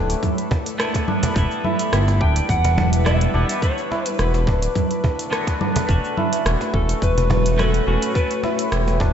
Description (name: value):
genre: organic downtempo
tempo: 106 BPM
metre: 4/4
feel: straight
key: E dorian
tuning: A4 = 440 Hz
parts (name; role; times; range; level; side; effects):
- electric slide guitar; melody; 0.0-9.1 s; A4 to G5; -26 LUFS; left 2 dB; lush chorus, diffuse ambient delay
- granular cloud pad; sustained chords; 0.0-9.1 s; G3 to C#5; -29 LUFS; left 1 dB; built-in reverb, vintage 12-bit sampler grit, sidechain pumping
- santur; arpeggios; 0.0-9.1 s; C#4 to D5; -27 LUFS; equal; diffuse ambient delay
- smooth synth bass; bass; 0.0-9.1 s; D1 to G1; -19 LUFS; equal; tube saturation, sidechain pumping
- organic electronic drum kit; drums; 0.1-9.0 s; cabasa, congas, hi-hat, rim click; -25 LUFS; right 2 dB; none
- electronic kick drum; drums; 0.2-9.1 s; none; -21 LUFS; equal; none
- cajon; percussion; 0.5-9.1 s; none; -28 LUFS; right 2 dB; none
- clean electric guitar; accompaniment; 0.8-8.3 s; D3 to F#4; -30 LUFS; right 2 dB; analog chorus, sidechain pumping, diffuse ambient delay
room: moderate lush hall reverb, RT60 2.4 s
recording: dreamy mix soaked in reverb, nothing above 7.9 kHz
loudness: -17 LUFS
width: side -9 dB against mid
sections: 0.0-9.1 A section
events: none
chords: 0.0 Asus2; 1.4 Em; 3.6 Bm7; 5.9 F#m/E; 8.2 Asus2